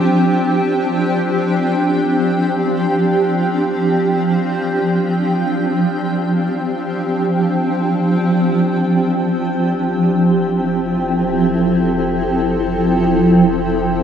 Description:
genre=ambient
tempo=free time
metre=none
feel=none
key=F major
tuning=A4 = 440 Hz
part: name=granular cloud pad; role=sustained chords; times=0.0-14.0 s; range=F3 to G5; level=-14 LUFS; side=equal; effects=built-in reverb
part: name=round analog bass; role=bass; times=8.5-14.0 s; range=F1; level=-31 LUFS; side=left 1 dB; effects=none
room=wet plate reverb, RT60 3.7 s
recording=dreamy mix soaked in reverb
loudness=-14 LUFS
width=side -8 dB against mid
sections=0.0-8.5 A section; 8.5-14.0 B section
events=none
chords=0.0 Csus2/F; 8.5 Fmaj7

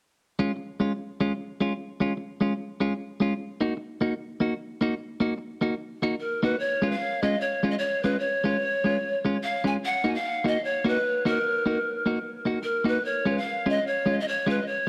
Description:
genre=ska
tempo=149 BPM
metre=4/4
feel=swing 59% on 8ths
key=Db mixolydian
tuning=A4 = 439 Hz
part: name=clean electric guitar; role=accompaniment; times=0.4-14.6 s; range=Ab3 to Gb4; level=-29 LUFS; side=equal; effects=none
part: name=breathy pan flute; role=melody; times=6.2-14.9 s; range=Bb4 to Ab5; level=-28 LUFS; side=equal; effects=tape echo
room=moderate large studio reverb, RT60 1.3 s, small room ambience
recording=dark, warm production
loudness=-27 LUFS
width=mono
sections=0.2-6.6 A section; 6.6-14.9 B section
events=none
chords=0.2 Db; 3.4 Ebm; 6.6 Db; 9.8 Ebm; 13.0 Db

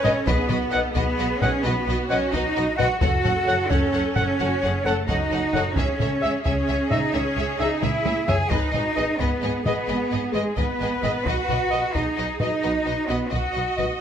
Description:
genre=cinematic, epic orchestral film score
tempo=87 BPM (dotted quarters)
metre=12/8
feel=straight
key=unclear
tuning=A4 = 440 Hz
part: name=rich symphonic violin section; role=melody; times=0.0-13.8 s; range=D#5 to F#5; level=-34 LUFS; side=left 3 dB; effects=none
part: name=silver concert flute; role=second line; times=0.0-13.8 s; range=G#4 to G#5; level=-29 LUFS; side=left 2 dB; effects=none
part: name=rich symphonic viola section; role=accompaniment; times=0.0-14.0 s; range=F#4 to D#5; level=-32 LUFS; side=right 1 dB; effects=none
part: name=dark French horn section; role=sustained chords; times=0.0-13.9 s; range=F#4 to D#5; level=-31 LUFS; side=left 6 dB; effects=none
part: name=mellow trumpet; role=stabs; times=0.0-13.8 s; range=D#5 to F#5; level=-29 LUFS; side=right 1 dB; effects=none
part: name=rich symphonic cello section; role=bass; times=0.0-14.0 s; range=G#3 to G#4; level=-25 LUFS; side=right 2 dB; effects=none
part: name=warm symphonic double bass section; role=bass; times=0.0-13.9 s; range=F#1 to C#2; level=-29 LUFS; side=right 2 dB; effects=none
part: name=taiko ensemble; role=drums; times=0.0-14.0 s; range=none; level=-26 LUFS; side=left 1 dB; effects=none
part: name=rich symphonic violin section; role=second line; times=0.1-13.9 s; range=F#4 to C#5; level=-34 LUFS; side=left 2 dB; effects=none
room=moderate recital hall reverb, RT60 1.4 s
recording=close, detailed microphones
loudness=-20 LUFS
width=side -8 dB against mid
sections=0.0-14.0 A section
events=drum fill 7.8-8.5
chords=0.3 B; 3.0 F#m; 5.8 C#m; 8.5 G#m; 11.3 B

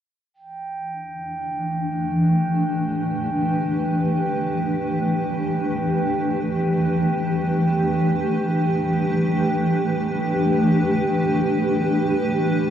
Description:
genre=ambient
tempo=free time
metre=none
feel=none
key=E minor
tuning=A4 = 441 Hz
part: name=granular cloud pad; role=sustained chords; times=1.3-12.7 s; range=E3 to B4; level=-20 LUFS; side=equal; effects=built-in reverb
part: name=glass harmonica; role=texture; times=0.3-12.7 s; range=G5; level=-28 LUFS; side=right 4 dB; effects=shimmer reverb
room=wet huge ambient reverb, RT60 7.5 s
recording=dark, warm production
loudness=-19 LUFS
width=side -9 dB against mid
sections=0.3-12.7 A section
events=none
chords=0.3 Em

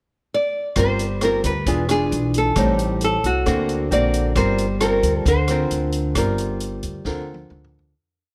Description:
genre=bossa nova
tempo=133 BPM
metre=4/4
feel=straight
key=G minor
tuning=A4 = 438 Hz
part: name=nylon-string guitar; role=melody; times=0.3-7.5 s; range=F#4 to D5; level=-24 LUFS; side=equal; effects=none
part: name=nylon-string guitar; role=accompaniment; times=0.8-7.9 s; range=A2 to Bb4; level=-25 LUFS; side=equal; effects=none
part: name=upright bass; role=bass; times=0.8-7.9 s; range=E1 to D2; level=-26 LUFS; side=equal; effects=none
part: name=vintage drum kit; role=drums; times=0.8-7.9 s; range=hi-hat, kick drum, rim click, snare drum, toms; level=-30 LUFS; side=equal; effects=none
room=light reverb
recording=none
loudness=-20 LUFS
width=mono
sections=0.0-0.8 pickup bar; 0.8-8.0 A section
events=fade-out 6.2-8.0; drum fill 7.1-8.0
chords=0.0 N.C.; 0.8 Gm7; 1.7 E7b9; 2.6 Am7b5; 3.5 Daug7; 4.4 Gm7

